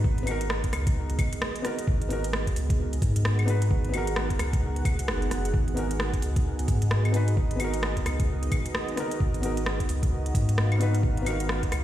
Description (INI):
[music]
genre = future garage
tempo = 131 BPM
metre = 4/4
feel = swing 61% on 16ths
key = G# minor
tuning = A4 = 440 Hz
[part]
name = felt-muted upright piano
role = accompaniment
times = 0.0-11.8 s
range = B3 to B4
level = -34 LUFS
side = left 2 dB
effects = sidechain pumping, digital delay
[part]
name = dark analog pad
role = sustained chords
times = 0.0-11.8 s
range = B3 to F#5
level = -33 LUFS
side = right 3 dB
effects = chorus, sidechain pumping
[part]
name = warm sub bass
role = bass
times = 0.0-11.8 s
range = F#1 to G#2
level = -27 LUFS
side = equal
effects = none
[part]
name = electronic kick drum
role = drums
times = 0.0-11.7 s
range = none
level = -26 LUFS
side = equal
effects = none
[part]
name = organic electronic drum kit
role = drums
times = 0.2-11.8 s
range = claves, hi-hat, rim click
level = -33 LUFS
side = equal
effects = none
[sound]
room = digital ambience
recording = played on a big sound system in a bare room, stone room reverb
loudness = -24 LUFS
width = side -12 dB against mid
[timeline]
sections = 0.0-11.8 A section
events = none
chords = 0.0 G#m7